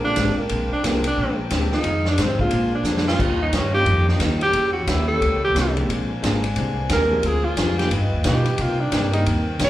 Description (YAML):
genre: jazz, big band swing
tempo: 178 BPM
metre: 4/4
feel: swing 63% on 8ths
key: Bb mixolydian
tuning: A4 = 440 Hz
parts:
  - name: breathy tenor saxophone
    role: melody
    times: 0.0-9.7 s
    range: Bb3 to D5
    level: -22 LUFS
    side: right 1 dB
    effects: none
  - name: hollow-body jazz guitar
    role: accompaniment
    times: 0.0-9.7 s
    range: F2 to G4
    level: -30 LUFS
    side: left 2 dB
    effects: none
  - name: warm baby grand piano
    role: accompaniment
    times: 0.0-9.2 s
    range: D3 to G4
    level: -30 LUFS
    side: equal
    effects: slapback echo
  - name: warm saxophone section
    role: sustained chords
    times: 0.0-9.7 s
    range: Eb3 to Ab5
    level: -32 LUFS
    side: left 2 dB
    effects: none
  - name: upright bass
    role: bass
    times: 0.0-9.7 s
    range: Ab1 to C3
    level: -23 LUFS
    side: equal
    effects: none
  - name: swinging big-band drum kit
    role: drums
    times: 0.2-9.7 s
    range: crash cymbal, hi-hat, kick drum, ride cymbal, snare drum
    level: -25 LUFS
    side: equal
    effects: none
room: light reverb, small room ambience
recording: live gig heard through the venue's PA, club reverb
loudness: -18 LUFS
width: side -14 dB against mid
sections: 0.0-9.7 A section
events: tenor saxophone solo 0.0-9.7; drum fill 2.9-3.2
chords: 0.0 Bb9; 1.8 Fm7; 2.5 Bb9; 3.2 Eb9; 4.5 Edim7; 5.9 Bb9; 7.2 Dm7b5; 7.9 G7alt; 8.6 Cm7